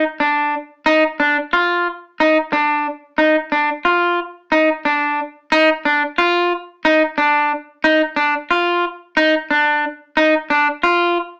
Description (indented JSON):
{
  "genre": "progressive instrumental, progressive",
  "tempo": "181 BPM (eighths)",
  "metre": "7/8",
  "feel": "straight",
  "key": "unclear",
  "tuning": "A4 = 442 Hz",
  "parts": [
    { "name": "electric guitar at the edge of break-up", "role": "solo", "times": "0.0-11.2 s", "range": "D4 to F4", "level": "-16 LUFS", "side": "equal", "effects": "none" }
  ],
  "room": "moderate studio reverb, RT60 0.5 s",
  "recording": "worn, warbling old tape, cassette tape, warbly pitch drift, small speaker sound",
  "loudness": "-17 LUFS",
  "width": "mono",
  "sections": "0.0-5.5 A section; 5.5-11.4 B section",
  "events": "none",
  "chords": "none",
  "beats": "0.19 0.53 | 0.86 1.19 1.52 1.86 2.19 2.52 2.85 | 3.19 3.52 3.85 4.19 4.52 4.85 5.18 | 5.51 5.85 6.18 6.51 6.84 7.18 7.51 | 7.84 8.17 8.50 8.84 9.17 9.50 9.83 | 10.16 10.49 10.83 11.16"
}